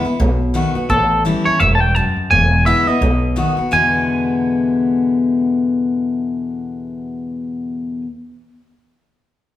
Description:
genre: rockabilly.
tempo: 170 BPM.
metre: 4/4.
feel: swing 59% on 8ths.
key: E mixolydian.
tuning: A4 = 439 Hz.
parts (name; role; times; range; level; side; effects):
picked steel-string acoustic guitar; accompaniment; 0.0-8.1 s; E2 to F#4; -18 LUFS; left 3 dB; none.
upright bass; bass; 0.0-8.0 s; E1 to E2; -19 LUFS; equal; none.
twangy electric guitar; melody; 0.9-8.0 s; A4 to A5; -16 LUFS; equal; none.
room: moderate large studio reverb, RT60 1.3 s.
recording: band playing live in one room.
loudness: -14 LUFS.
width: side -13 dB against mid.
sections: 0.9-3.7 A section; 3.7-6.5 B section.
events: none.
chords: 0.2 B7; 0.9 A7; 2.3 E7; 3.0 B7; 3.7 E7.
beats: 0.19 0.54 | 0.90 1.25 1.60 1.96 | 2.31 2.66 3.02 3.37 | 3.72 4.08 4.43 4.78 | 5.14 5.49 5.84 6.20.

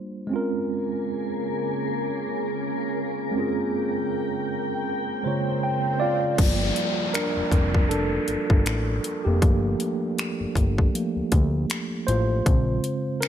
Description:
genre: contemporary R&B.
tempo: 79 BPM.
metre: 4/4.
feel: swing 58% on 16ths.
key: unclear.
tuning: A4 = 440 Hz.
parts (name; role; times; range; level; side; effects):
mellow tine electric piano; accompaniment; 0.0-13.3 s; Db3 to G5; -26 LUFS; right 2 dB; fast stereo tremolo.
glassy FM pad; sustained chords; 0.7-6.4 s; Db3 to G5; -30 LUFS; left 1 dB; ensemble chorus, built-in reverb.
swell and downlifter; sound effects; 5.2-12.5 s; none; -33 LUFS; left 1 dB; none.
fat analog bass; bass; 6.4-12.8 s; F1 to D2; -25 LUFS; left 1 dB; none.
trap drum kit; drums; 6.4-13.3 s; crash cymbal, finger snaps, hi-hat, kick drum; -23 LUFS; left 1 dB; none.
room: light reverb, digital ambience.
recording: none.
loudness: -22 LUFS.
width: side -10 dB against mid.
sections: 0.0-6.4 A section; 6.4-13.3 B section.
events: swell 5.2-6.4; tine electric piano fill 5.2-6.4; tine electric piano solo 6.4-13.3.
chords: 0.3 Bbm9; 6.4 Gm9; 12.5 Bbm9.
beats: | 0.31 1.07 1.83 2.59 | 3.35 4.11 4.87 5.63 | 6.39 7.14 7.91 8.66 | 9.42 10.18 10.94 11.70 | 12.46 13.22.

